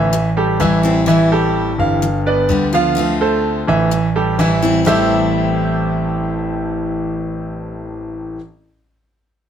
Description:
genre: latin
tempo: 127 BPM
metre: 4/4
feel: straight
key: A minor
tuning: A4 = 439 Hz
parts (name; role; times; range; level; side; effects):
- picked steel-string acoustic guitar; accompaniment; 0.0-8.4 s; A2 to F4; -19 LUFS; left 4 dB; none
- clear baby grand piano; arpeggios; 0.0-8.4 s; E3 to F5; -18 LUFS; right 3 dB; none
- warm concert grand piano; bass; 0.0-8.3 s; G1 to D2; -20 LUFS; right 1 dB; none
room: moderate studio reverb, RT60 0.6 s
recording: none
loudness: -14 LUFS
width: side -9 dB against mid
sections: 0.0-4.9 A section; 4.9-8.7 B section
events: none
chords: 0.1 Am7; 2.0 G7; 3.0 Dm7; 3.9 Am7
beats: 0.13 0.60 | 1.07 1.55 2.02 2.50 | 2.97 3.44 3.92 4.39 | 4.87 5.34 5.81 6.29 | 6.76 7.24 7.71 8.18

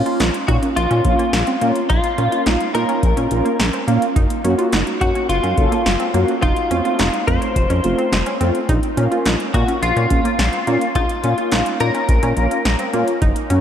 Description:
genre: synth-pop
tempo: 106 BPM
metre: 4/4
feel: straight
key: Bb harmonic minor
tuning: A4 = 440 Hz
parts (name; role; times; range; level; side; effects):
- chorused synth bass; bass; 0.0-13.6 s; F1 to Bb2; -20 LUFS; equal; none
- mellow synth brass; accompaniment; 0.1-13.6 s; A3 to A4; -21 LUFS; equal; chorus
- analog pluck; arpeggios; 0.1-13.6 s; Bb3 to F4; -24 LUFS; right 2 dB; chorus, diffuse ambient delay
- electro analog drum machine; drums; 0.1-13.6 s; hi-hat, kick drum, snare drum; -21 LUFS; equal; none
- direct-recorded clean electric guitar; melody; 0.5-12.9 s; F4 to C5; -22 LUFS; left 2 dB; analog chorus, diffuse ambient delay
room: wet cathedral reverb, RT60 6.1 s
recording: dreamy mix soaked in reverb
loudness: -15 LUFS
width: side -9 dB against mid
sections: 0.0-13.6 A section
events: none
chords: 0.0 Bbm; 4.2 Gb; 6.4 F; 8.7 Bbm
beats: 0.20 0.77 1.33 | 1.90 2.46 3.03 3.60 | 4.16 4.73 5.29 5.86 | 6.42 6.99 7.56 8.12 | 8.69 9.26 9.82 10.39 | 10.95 11.52 12.09 12.65 | 13.22

